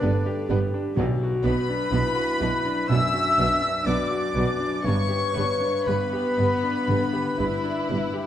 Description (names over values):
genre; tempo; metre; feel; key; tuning
cinematic, emotional film score for orchestra; 58-64 BPM; 4/4; rubato; B minor; A4 = 441 Hz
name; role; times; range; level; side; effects
warm symphonic violin section; melody; 0.0-8.3 s; D5 to E6; -32 LUFS; left 4 dB; none
clear oboe; second line; 0.0-8.3 s; D4 to E5; -33 LUFS; right 1 dB; none
mellow silver concert flute; second line; 0.0-8.3 s; D5 to E6; -31 LUFS; left 1 dB; none
warm chamber violin section; second line; 0.0-8.3 s; B3 to E4; -32 LUFS; left 2 dB; none
warm clarinet; second line; 0.0-8.3 s; D4 to E5; -32 LUFS; equal; none
bright grand piano; accompaniment; 0.0-8.3 s; B1 to B4; -30 LUFS; left 1 dB; none
dark chamber viola section; accompaniment; 0.0-8.0 s; F#3 to B3; -34 LUFS; right 2 dB; none
dark French horn section; sustained chords; 0.0-8.3 s; D4 to B4; -30 LUFS; left 3 dB; none
dark symphonic double bass section; bass; 0.0-8.0 s; G1 to B1; -30 LUFS; right 3 dB; none
warm symphonic cello section; bass; 0.0-8.0 s; G2 to B2; -30 LUFS; right 2 dB; none
timpani; percussion; 1.0-2.4 s; B2; -29 LUFS; equal; none
room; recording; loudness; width
wet scoring stage reverb, RT60 1.5 s; dark, warm production; -21 LUFS; side -11 dB against mid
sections
0.0-8.3 A section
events
none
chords
0.0 G; 1.0 Bm; 4.9 G